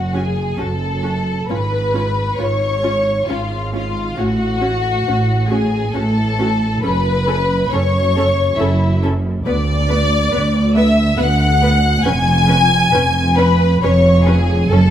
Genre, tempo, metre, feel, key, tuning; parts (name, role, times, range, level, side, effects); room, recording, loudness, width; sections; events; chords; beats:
classical, slow romantic movement for string orchestra; 68 BPM; 3/4; rubato; F# minor; A4 = 437 Hz
rich studio violin section; melody; 0.0-14.9 s; E5 to G#6; -26 LUFS; left 2 dB
rich studio violin section; second line; 0.0-14.9 s; E4 to G#5; -18 LUFS; left 2 dB
warm studio cello section; bass; 0.0-14.9 s; D2 to A2; -18 LUFS; right 1 dB
warm studio double bass section; bass; 0.0-14.9 s; E#1 to D2; -20 LUFS; right 2 dB
clear studio viola section; accompaniment; 0.1-14.8 s; B3 to B4; -24 LUFS; equal
moderate recital hall reverb, RT60 1.8 s; close, detailed microphones; -14 LUFS; side -10 dB against mid
0.0-14.9 A section
0.0 F#m; 1.5 C#7/G#; 4.2 F#m/A; 6.8 F#m; 9.5 Bm/D; 12.1 C#7/E#
0.60 | 1.50 2.39 3.29 | 4.18 5.07 5.94 | 6.83 7.71 8.59 | 9.46 10.33 11.20 | 12.06 12.94 13.82 | 14.71